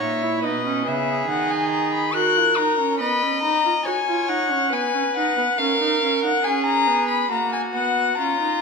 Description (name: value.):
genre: classical, baroque-style fugue for string quartet.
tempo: 70 BPM.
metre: 4/4.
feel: straight.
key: unclear.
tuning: A4 = 437 Hz.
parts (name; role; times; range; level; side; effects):
dark violin; melody; 0.0-8.6 s; D#5 to F#6; -21 LUFS; left 6 dB; none.
rich violin; second line; 0.0-8.6 s; E#4 to D#5; -25 LUFS; right 2 dB; none.
warm viola; accompaniment; 0.0-8.6 s; A#3 to F#4; -26 LUFS; right 6 dB; none.
dark cello; bass; 0.0-2.1 s; A#2 to D#3; -31 LUFS; right 6 dB; none.
room: wet recital hall reverb, RT60 1.8 s.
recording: minimal, uncompressed stereo recording.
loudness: -18 LUFS.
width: side -4 dB against mid.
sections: 0.0-8.6 A section.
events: none.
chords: 0.4 B; 2.2 F#; 5.6 C#7; 7.3 F#/A#.